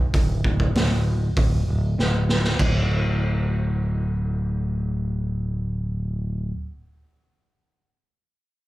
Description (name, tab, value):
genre	quiet-loud alternative rock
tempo	97 BPM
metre	4/4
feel	straight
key	unclear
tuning	A4 = 440 Hz
part	growling picked electric bass	bass	0.0-6.5 s	D1	-22 LUFS	equal	overdrive
part	raw garage drum kit	drums	0.1-2.7 s	crash cymbal, hi-hat, kick drum, snare drum	-24 LUFS	equal	none
room	little or no reverb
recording	live gig heard through the venue's PA, club reverb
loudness	-21 LUFS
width	side -17 dB against mid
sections	0.0-2.6 A section; 2.6-5.1 B section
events	drum fill 2.0-2.6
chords	none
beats	| 0.13 0.75 1.36 1.98 | 2.60 3.21 3.83 4.45